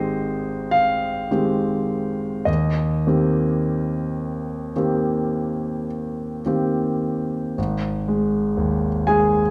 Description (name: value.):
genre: classical, impressionist solo piano.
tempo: 32-40 BPM (dotted quarters).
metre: 9/8.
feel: rubato.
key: Eb major.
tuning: A4 = 439 Hz.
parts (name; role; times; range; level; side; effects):
clear concert grand piano; solo; 0.0-9.5 s; Ab1 to Ab5; -22 LUFS; equal; none.
room: moderate recital hall reverb, RT60 1.4 s.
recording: dark, warm production.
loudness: -22 LUFS.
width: mono.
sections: 0.0-7.6 A section; 7.6-9.5 B section.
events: none.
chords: 0.0 Abmaj7; 2.5 Eb6; 7.6 Ab5.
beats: 0.73 | 2.48 4.20 5.88 | 7.57 9.08.